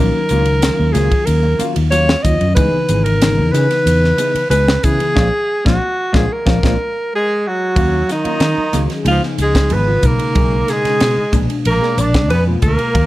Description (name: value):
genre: electric jazz fusion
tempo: 92 BPM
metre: 4/4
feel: straight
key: Eb minor from 7.8 s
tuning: A4 = 440 Hz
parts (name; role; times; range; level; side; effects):
- breathy alto saxophone; melody; 0.0-13.1 s; Eb4 to Eb5; -18 LUFS; equal; plate reverb
- tine electric piano; accompaniment; 0.0-13.1 s; B2 to F5; -22 LUFS; left 3 dB; ensemble chorus, plate reverb
- mellow electric guitar; stabs; 0.0-13.1 s; Fb3 to Ab4; -25 LUFS; equal; lush chorus, plate reverb
- fretless electric bass; bass; 0.0-13.1 s; Ab1 to Eb3; -16 LUFS; equal; analog chorus
- crisp fusion drum kit; drums; 0.3-13.1 s; hi-hat, kick drum, ride cymbal, snare drum; -19 LUFS; equal; none
- breathy tenor saxophone; second line; 7.2-13.1 s; Eb3 to D4; -22 LUFS; right 2 dB; plate reverb
room: light reverb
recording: none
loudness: -12 LUFS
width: side -16 dB against mid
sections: 0.0-7.8 A section; 7.8-13.1 B section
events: band accent 5.2-7.8; drum fill 6.5-7.8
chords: 0.0 Ebm9; 2.6 Dbm9; 5.2 Bb7; 7.8 Ebm9; 9.1 Db9; 10.0 B69; 11.3 Bb7b9